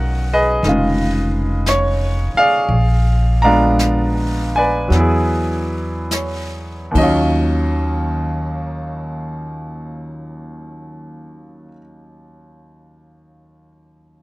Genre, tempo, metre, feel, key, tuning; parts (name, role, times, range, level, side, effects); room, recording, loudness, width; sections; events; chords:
jazz ballad; 46-60 BPM; 4/4; swing 67% on 8ths; Eb minor; A4 = 441 Hz
clear grand piano; accompaniment; 0.0-14.2 s; Eb2 to Bb5; -18 LUFS; equal
upright bass; bass; 0.0-11.7 s; F1 to E2; -19 LUFS; equal
jazz brush drum kit; drums; 0.6-7.2 s; brushed snare drum, hi-hat, kick drum, ride cymbal, snare drum; -27 LUFS; left 1 dB
little or no reverb; close, detailed microphones; -15 LUFS; side -20 dB against mid
0.0-7.4 A section; 7.4-12.5 B section
slowing down 0.0-7.4
0.0 Bmaj7; 0.6 Fm7b5; 2.7 Bb7b9; 4.9 E9; 6.7 Ebm9